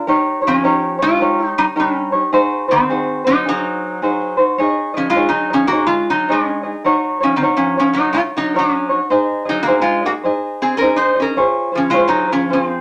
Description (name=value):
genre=Hawaiian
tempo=106 BPM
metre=4/4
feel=swing 62% on 8ths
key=Db major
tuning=A4 = 435 Hz
part: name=tenor ukulele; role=accompaniment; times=0.0-12.8 s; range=Eb4 to Eb5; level=-19 LUFS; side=equal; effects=none
part: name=metal-body resonator slide guitar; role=melody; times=0.5-12.8 s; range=Eb3 to C5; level=-19 LUFS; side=equal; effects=none
room=wet studio reverb, RT60 0.6 s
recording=none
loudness=-16 LUFS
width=mono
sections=0.0-12.8 A section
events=none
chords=0.1 Eb7; 2.3 Ab7; 4.6 Dbsus2; 6.9 Ebm7; 9.1 Ab; 11.4 Dbmaj7